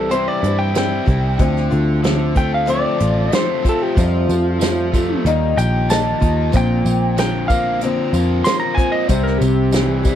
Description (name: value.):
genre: folk rock and heartland rock.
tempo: 94 BPM.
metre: 4/4.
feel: straight.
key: unclear.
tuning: A4 = 440 Hz.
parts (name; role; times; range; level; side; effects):
lightly driven lead guitar; melody; 0.0-10.2 s; F4 to C6; -21 LUFS; right 1 dB; none.
picked acoustic archtop guitar; accompaniment; 0.0-10.2 s; F2 to G4; -22 LUFS; left 7 dB; none.
overdriven electric guitar; riff; 0.0-10.2 s; Bb2 to G4; -24 LUFS; right 1 dB; spring reverb.
picked electric bass; bass; 0.0-10.2 s; A1 to G2; -19 LUFS; equal; none.
soft brush drum kit; drums; 0.1-10.2 s; hi-hat, kick drum, snare drum; -19 LUFS; right 1 dB; none.
tambourine; percussion; 4.0-10.2 s; none; -34 LUFS; right 12 dB; none.
room: little or no reverb.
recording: none.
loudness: -15 LUFS.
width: side -10 dB against mid.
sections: 0.0-10.2 A section.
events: lead electric guitar solo 0.0-10.2.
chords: 0.0 C; 1.4 Dm7; 4.0 Fadd9; 5.2 Ebadd9; 6.5 Bbadd9; 9.1 C.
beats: 0.11 0.75 | 1.39 2.04 2.68 3.32 | 3.97 4.61 5.25 5.89 | 6.53 7.17 7.81 8.45 | 9.09 9.73.